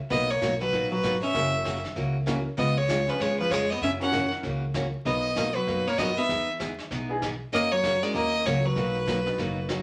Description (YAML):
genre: country, western swing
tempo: 194 BPM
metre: 4/4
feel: swing 61% on 8ths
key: B major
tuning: A4 = 441 Hz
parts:
  - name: clear fiddle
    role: melody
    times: 0.1-9.7 s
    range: B4 to F#5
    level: -29 LUFS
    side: equal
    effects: none
  - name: archtop guitar, miked and amplified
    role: second line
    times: 0.1-9.7 s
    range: E#3 to C#4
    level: -33 LUFS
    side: equal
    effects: none
  - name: picked steel-string acoustic guitar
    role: accompaniment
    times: 0.1-9.8 s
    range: B2 to G#4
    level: -35 LUFS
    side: equal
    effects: none
  - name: upright bass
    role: bass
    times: 0.1-9.8 s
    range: F#1 to F#2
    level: -35 LUFS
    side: equal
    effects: none
  - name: vintage brush drum kit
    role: drums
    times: 0.1-9.8 s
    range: brushed snare drum, hi-hat, kick drum, snare drum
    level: -40 LUFS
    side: equal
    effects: none
  - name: clear upright piano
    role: accompaniment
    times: 1.3-9.7 s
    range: B3 to B4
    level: -37 LUFS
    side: equal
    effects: none
room: wet studio ambience, RT60 0.5 s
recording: vinyl crackle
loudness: -27 LUFS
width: mono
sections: 0.0-9.8 A section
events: none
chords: 0.1 Bmaj9; 1.3 F#7; 2.6 C#7; 3.8 F#7; 5.1 Bmaj7; 6.3 Emaj7; 7.5 F#7; 8.8 Bmaj7